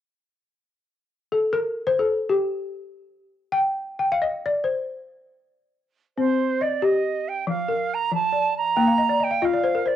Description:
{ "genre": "west african traditional", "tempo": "free time", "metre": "none", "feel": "none", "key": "C dorian", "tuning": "A4 = 439 Hz", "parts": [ { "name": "balafon", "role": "arpeggios", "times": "1.3-10.0 s", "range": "F3 to G5", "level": "-22 LUFS", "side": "left 2 dB", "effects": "cassette tape" }, { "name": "silver concert flute", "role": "melody", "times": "6.2-10.0 s", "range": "C5 to Bb5", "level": "-23 LUFS", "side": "right 6 dB", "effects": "none" } ], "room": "wet studio reverb, RT60 0.5 s", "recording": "home recording on cassette", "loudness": "-21 LUFS", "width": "side -11 dB against mid", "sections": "0.9-6.2 A section; 6.2-10.0 B section", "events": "balafon solo 0.9-6.2; balafon fill 8.8-10.0", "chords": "0.9 N.C.; 6.2 Cm; 7.5 F; 8.8 Bb" }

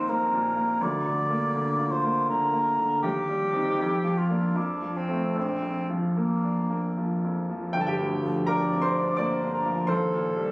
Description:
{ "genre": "classical, romantic duo for cor anglais and grand piano", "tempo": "74-87 BPM", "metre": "3/4", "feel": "rubato", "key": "Bb major", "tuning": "A4 = 440 Hz", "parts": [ { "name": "mellow cor anglais", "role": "melody", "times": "0.0-10.5 s", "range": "Bb3 to D5", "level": "-27 LUFS", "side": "equal", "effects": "none" }, { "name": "bright grand piano", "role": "accompaniment", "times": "0.0-10.5 s", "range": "G1 to D6", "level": "-26 LUFS", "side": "equal", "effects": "none" } ], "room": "wet recital hall reverb, RT60 1.6 s", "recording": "recorded on a phone in the room, club reverb", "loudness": "-23 LUFS", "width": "side -24 dB against mid", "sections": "0.0-7.8 A section; 7.8-10.5 B section", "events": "none", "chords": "0.0 Eb5; 0.8 Bb/D; 3.0 Cm/Eb; 3.8 Bb/F; 4.6 F; 5.4 Bb; 7.8 Gm7; 9.9 Eb" }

